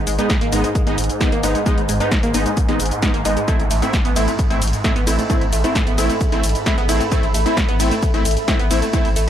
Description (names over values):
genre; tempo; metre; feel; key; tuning
driving peak-time techno; 132 BPM; 4/4; straight; unclear; A4 = 440 Hz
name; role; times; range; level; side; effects
saturated sub bass; bass; 0.0-9.3 s; G#1 to A1; -22 LUFS; equal; sidechain pumping, low-pass filter
swarming drone; drone; 0.0-9.3 s; G#2; -27 LUFS; right 1 dB; built-in reverb, sidechain pumping
analog pluck; riff; 0.1-9.2 s; G#3 to E4; -26 LUFS; right 1 dB; chorus, phaser, sidechain pumping, tape echo
techno drum kit; drums; 0.1-9.3 s; hi-hat, ride cymbal, shaker, snare drum; -25 LUFS; equal; overdrive
rave stab; stabs; 0.2-9.1 s; G#3 to E4; -22 LUFS; equal; chorus, built-in reverb, sidechain pumping, tape echo
electronic kick drum; drums; 0.3-9.0 s; none; -20 LUFS; equal; none
ethereal airy pad; texture; 4.8-9.3 s; A4 to B5; -26 LUFS; equal; ensemble chorus, built-in reverb, phaser, sidechain pumping
room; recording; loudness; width
light reverb, digital ambience; dry, gritty hardware recording; -15 LUFS; side -10 dB against mid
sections
0.0-9.3 A section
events
none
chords
0.0 G#m; 3.5 Am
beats
0.30 0.75 1.21 | 1.66 2.12 2.57 3.02 | 3.48 3.93 4.39 4.84 | 5.30 5.75 6.21 6.66 | 7.12 7.57 8.03 8.48 | 8.93